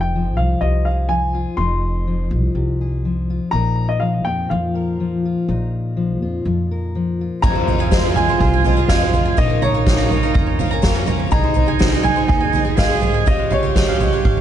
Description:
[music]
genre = indie folk with a building arrangement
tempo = 123 BPM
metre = 4/4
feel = straight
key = F minor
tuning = A4 = 438 Hz
[part]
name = warm upright piano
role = melody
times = 0.0-14.4 s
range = Db5 to C6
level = -24 LUFS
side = left 1 dB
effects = digital delay
[part]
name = fingerpicked steel-string acoustic guitar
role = accompaniment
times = 0.0-9.4 s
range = F2 to Bb4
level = -23 LUFS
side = left 4 dB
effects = none
[part]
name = upright bass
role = bass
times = 0.0-14.4 s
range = F1 to Ab2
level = -22 LUFS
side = equal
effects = none
[part]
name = warm cello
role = second line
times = 7.4-14.4 s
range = Db4 to Ab4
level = -23 LUFS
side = right 7 dB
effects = none
[part]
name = picked twelve-string acoustic guitar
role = accompaniment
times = 7.4-14.4 s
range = F2 to Ab4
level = -24 LUFS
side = left 7 dB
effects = none
[part]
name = mandolin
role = arpeggios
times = 7.4-14.4 s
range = Ab3 to Bb5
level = -25 LUFS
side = right 8 dB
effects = none
[part]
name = soft-mallet drum kit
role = drums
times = 7.4-14.4 s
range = crash cymbal, kick drum, snare drum, toms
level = -17 LUFS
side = right 1 dB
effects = none
[sound]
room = light reverb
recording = dark, warm production, nothing above 10.7 kHz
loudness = -16 LUFS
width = side -10 dB against mid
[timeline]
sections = 0.0-7.4 A section; 7.4-14.4 B section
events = none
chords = 0.0 Fm7; 3.5 Bbsus4; 7.4 Fm; 9.4 Bbm; 11.3 Ab/C; 13.3 Db

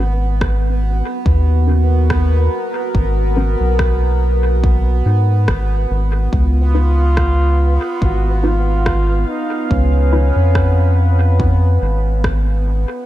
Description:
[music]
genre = ambient dub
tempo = 71 BPM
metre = 4/4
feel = swing 55% on 16ths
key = G# dorian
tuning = A4 = 440 Hz
[part]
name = deep dark ambient pad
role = sustained chords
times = 0.9-13.1 s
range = F#4 to E#5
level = -25 LUFS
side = equal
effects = chorus, built-in reverb
[part]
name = filtered dub chord stab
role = stabs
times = 0.0-10.3 s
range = C#4 to B4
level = -25 LUFS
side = left 1 dB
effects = phaser, dub echo
[part]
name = round analog bass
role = bass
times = 0.0-12.9 s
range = G#1 to G#2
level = -14 LUFS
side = equal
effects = none
[part]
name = bubbling stepped-filter texture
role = texture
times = 0.0-13.1 s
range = B3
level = -25 LUFS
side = right 3 dB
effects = chorus, built-in reverb
[part]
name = electronic kick drum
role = drums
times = 0.4-12.4 s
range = none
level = -19 LUFS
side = equal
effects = small room ambience
[part]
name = electronic rim click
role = drums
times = 0.4-12.4 s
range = none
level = -28 LUFS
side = equal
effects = small room ambience, dub echo
[part]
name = mellow trombone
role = melody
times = 6.3-12.2 s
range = C#4 to F#4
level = -23 LUFS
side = right 1 dB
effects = dub echo
[sound]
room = digital ambience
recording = echo-heavy mix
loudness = -13 LUFS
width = side -14 dB against mid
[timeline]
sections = 0.0-13.1 A section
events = filter sweep on synth stab 0.0-13.1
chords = 0.0 G#m11; 6.3 C#7

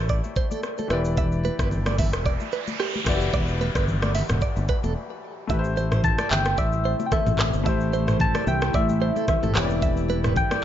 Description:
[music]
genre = afrobeats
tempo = 111 BPM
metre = 4/4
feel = swing 55% on 16ths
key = A minor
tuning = A4 = 439 Hz
[part]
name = clear grand piano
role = accompaniment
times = 0.0-10.6 s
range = E3 to D5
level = -32 LUFS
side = left 5 dB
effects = none
[part]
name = fingered electric bass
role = bass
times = 0.0-10.4 s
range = E1 to C2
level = -25 LUFS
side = equal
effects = none
[part]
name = direct-recorded clean electric guitar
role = riff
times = 0.1-10.6 s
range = G4 to E5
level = -31 LUFS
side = right 8 dB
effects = tremolo, ping-pong delay
[part]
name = afro-pop drum kit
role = drums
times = 0.1-10.6 s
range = handclaps, hi-hat, kick drum, rim click, shaker, toms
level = -25 LUFS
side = equal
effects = none
[part]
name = congas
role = percussion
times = 0.3-10.6 s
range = none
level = -34 LUFS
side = left 2 dB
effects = none
[part]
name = noise sweep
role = sound effects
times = 1.7-5.5 s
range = none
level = -34 LUFS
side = equal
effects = none
[part]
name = deep dark ambient pad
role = sustained chords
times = 6.2-10.6 s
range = C3 to E4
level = -31 LUFS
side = left 1 dB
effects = chorus, built-in reverb
[part]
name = soft struck synth lead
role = melody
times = 6.0-10.6 s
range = E5 to A5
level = -26 LUFS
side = left 2 dB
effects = chorus, phaser, ping-pong delay
[sound]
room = little or no reverb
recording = nothing above 7.5 kHz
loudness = -21 LUFS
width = side -10 dB against mid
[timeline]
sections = 0.0-5.5 A section; 5.5-10.6 B section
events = noise sweep 1.7-5.5; break 5.0-5.5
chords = 0.0 Am7; 0.9 Em7; 5.5 Am7; 9.6 Em7

